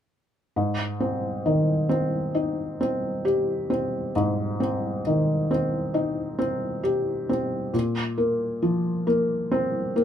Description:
folk; 67 BPM; 4/4; straight; Ab major; A4 = 438 Hz
felt-muted upright piano; solo; 0.6-10.0 s; Ab2 to G4; -23 LUFS; equal
moderate small room reverb, RT60 0.5 s; minimal, uncompressed stereo recording; -23 LUFS; side -9 dB against mid
0.6-10.0 A section
0.6 Abmaj7; 7.7 Bbsus2

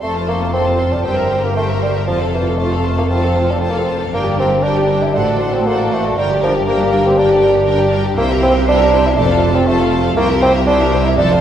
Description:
quick classical-period movement for symphony orchestra; 118 BPM; 4/4; rubato; F major; A4 = 439 Hz
clear studio violin section; melody; 0.0-11.4 s; D5 to C6; -27 LUFS; left 2 dB
clear studio violin section; second line; 0.0-11.4 s; G4 to C5; -25 LUFS; left 2 dB
mellow bassoon; accompaniment; 0.0-11.4 s; E3 to E4; -16 LUFS; right 2 dB
rich studio viola section; accompaniment; 0.0-11.4 s; C4 to Bb4; -24 LUFS; equal
dark French horn section; sustained chords; 0.0-11.4 s; E4 to C5; -21 LUFS; left 3 dB
clear studio cello section; bass; 0.0-11.4 s; C2 to C3; -20 LUFS; right 1 dB
clear studio double bass section; bass; 0.0-11.4 s; F1 to C2; -20 LUFS; equal
wet scoring stage reverb, RT60 2.0 s; heard from further back in the room; -12 LUFS; side -10 dB against mid
0.0-11.4 A section
0.0 F; 1.0 C7/G; 2.1 F; 4.1 Gm; 5.1 D7/A; 6.2 Gm; 8.2 C7; 9.2 F; 10.2 C7

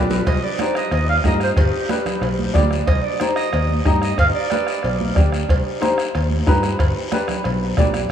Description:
latin, cumbia; 184 BPM; 4/4; straight; C harmonic minor; A4 = 440 Hz
warm upright piano; accompaniment; 0.0-8.0 s; D4 to Eb5; -23 LUFS; left 2 dB
fingered electric bass; bass; 0.0-8.1 s; G1 to G2; -21 LUFS; left 1 dB
congas; percussion; 0.1-8.1 s; -29 LUFS; right 3 dB
guiro; percussion; 0.1-8.1 s; -34 LUFS; left 6 dB
timbales and cowbell; percussion; 0.1-7.9 s; -29 LUFS; right 1 dB
mellow clarinet; melody; 0.3-5.3 s; G4 to F5; -24 LUFS; right 3 dB
bombo; percussion; 0.3-8.1 s; -22 LUFS; equal
moderate cathedral reverb, RT60 6.6 s; in a vast, echoing space; -16 LUFS; side -9 dB against mid
0.3-8.1 A section
drum fill 0.0
0.3 Cm; 1.6 G; 2.9 Cm; 4.2 G; 5.5 Cm; 6.8 G

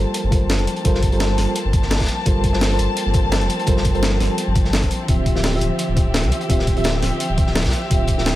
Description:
liquid drum and bass; 170 BPM; 4/4; straight; G minor; A4 = 441 Hz
mellow FM electric piano; accompaniment; 0.0-8.4 s; D3 to E5; -24 LUFS; right 1 dB; chorus, tremolo, digital delay
dark chamber string section; sustained chords; 0.0-8.4 s; F3 to A5; -25 LUFS; left 2 dB
warm sub bass; bass; 0.0-8.4 s; D1 to C2; -21 LUFS; equal
breakbeat sampler-style drum kit; drums; 0.1-8.3 s; hi-hat, snare drum; -24 LUFS; equal; studio reverb
crunchy breakbeat drum kit; drums; 0.1-8.3 s; hi-hat, snare drum; -29 LUFS; equal; high-pass filter on hats, studio reverb, high-pass filter on snare, high-pass filter on room
electronic kick drum; drums; 0.3-8.2 s; -19 LUFS; equal; studio reverb
little or no reverb; -16 LUFS; side -15 dB against mid
0.0-8.4 A section
0.0 Gm11; 5.1 Dm11

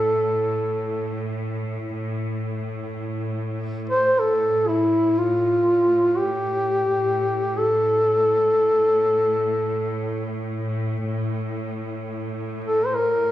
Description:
caucasian folk; free time; A4 = 440 Hz
mellow duduk; melody; 0.0-13.3 s; E4 to C5; -19 LUFS; equal
clear chamber cello section; drone; 0.0-13.3 s; A2; -28 LUFS; equal
wet recital hall reverb, RT60 1.4 s; recorded in a church or concert hall; -20 LUFS; side -13 dB against mid
0.0-13.3 A section

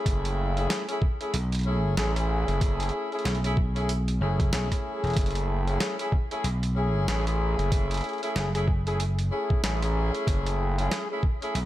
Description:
glitch hop; 94 BPM; 4/4; swing 59% on 16ths; F# minor; A4 = 440 Hz
mellow horn section; stabs; 0.0-11.6 s; A3 to G#4; -30 LUFS; left 1 dB; vintage 12-bit sampler grit, sidechain pumping, dub echo
gritty driven synth bass; bass; 0.1-10.9 s; F#1 to A1; -27 LUFS; equal; distortion, tube saturation
boom bap sampler-style drum kit; drums; 0.1-11.7 s; hi-hat, rim click, snare drum; -33 LUFS; right 1 dB
electronic kick drum; drums; 0.1-11.4 s; -25 LUFS; equal
vintage slap bass; bass; 1.3-11.7 s; E1 to B1; -26 LUFS; equal
digital ambience; -24 LUFS; side -14 dB against mid
0.0-11.7 A section
0.0 F#m7

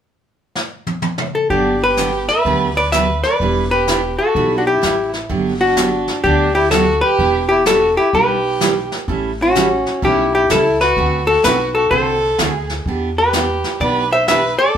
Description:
country, western swing; 127 BPM; 4/4; swing 65% on 8ths; G major; A4 = 440 Hz
jazz brush drum kit; drums; 0.6-14.8 s; brushed snare drum, hi-hat, kick drum, snare drum, toms; -23 LUFS; left 1 dB
hollow-body jazz guitar; melody; 1.3-14.8 s; F#4 to E5; -16 LUFS; left 2 dB
dark fiddle; second line; 1.5-14.8 s; C#4 to C5; -20 LUFS; right 3 dB
picked steel-string acoustic guitar; accompaniment; 1.5-14.4 s; D3 to B4; -22 LUFS; right 5 dB
upright bass; bass; 1.5-14.8 s; E1 to E2; -24 LUFS; equal
wet studio reverb, RT60 0.6 s; band playing live in one room; -14 LUFS; side -8 dB against mid
0.0-1.5 A section; 1.5-5.3 B section; 5.3-14.8 C section
drum fill 0.6-1.5
0.0 N.C.; 1.5 Gmaj7; 3.4 Em7; 5.3 Gmaj7; 7.2 Em7; 9.1 A7; 11.0 D7; 12.9 Em7

